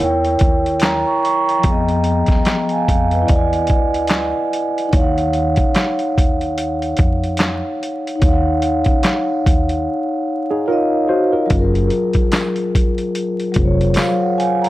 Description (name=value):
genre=lo-fi hip hop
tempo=73 BPM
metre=4/4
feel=swing 59% on 16ths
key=unclear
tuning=A4 = 441 Hz
part: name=vibraphone with soft mallets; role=accompaniment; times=0.0-14.7 s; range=F3 to C#6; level=-17 LUFS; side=equal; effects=none
part: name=upright bass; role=bass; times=0.0-13.9 s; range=F1 to F2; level=-21 LUFS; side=equal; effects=tube saturation
part: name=boom bap sampler-style drum kit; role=drums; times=0.0-14.7 s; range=handclaps, hi-hat, kick drum, snare drum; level=-17 LUFS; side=equal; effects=vintage 12-bit sampler grit
part: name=tine electric piano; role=second line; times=10.5-11.7 s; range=Eb4 to C5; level=-20 LUFS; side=right 1 dB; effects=medium stereo tremolo, analog delay
part: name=tambourine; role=percussion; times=12.3-14.2 s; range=none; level=-37 LUFS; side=right 1 dB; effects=none
room=small room ambience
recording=dry, gritty hardware recording, vinyl crackle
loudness=-14 LUFS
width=side -16 dB against mid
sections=0.0-11.5 A section; 11.5-14.7 B section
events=drums muted 9.9-11.5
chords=0.0 Edim7; 1.6 Fm7b5; 3.3 E9; 4.9 Ebm9; 11.5 Gbmaj9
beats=0.00 0.82 | 1.64 2.46 3.28 4.11 | 4.93 5.75 6.57 7.39 | 8.21 9.04 9.86 10.68 | 11.50 12.32 13.15 13.97